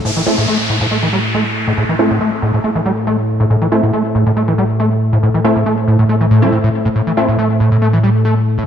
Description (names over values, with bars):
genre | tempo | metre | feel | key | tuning
techno | 139 BPM | 4/4 | straight | A minor | A4 = 440 Hz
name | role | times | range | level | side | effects
overdriven acid bass | riff | 0.0-8.6 s | A2 to A3 | -15 LUFS | equal | distortion, analog chorus, ping-pong delay
deep dark ambient pad | drone | 0.0-8.7 s | A2 to A3 | -16 LUFS | equal | chorus, built-in reverb
downlifter | sound effects | 0.0-3.5 s | none | -21 LUFS | equal | none
rave stab | stabs | 0.3-7.3 s | A3 to E4 | -19 LUFS | right 1 dB | chorus, built-in reverb, ping-pong delay
room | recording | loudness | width
moderate plate reverb, RT60 1.8 s | dark, warm production | -12 LUFS | side -9 dB against mid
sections
0.0-8.7 A section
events
filter sweep on acid bass 0.0-8.7; filter sweep on synth stab 0.0-8.7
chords
0.0 Am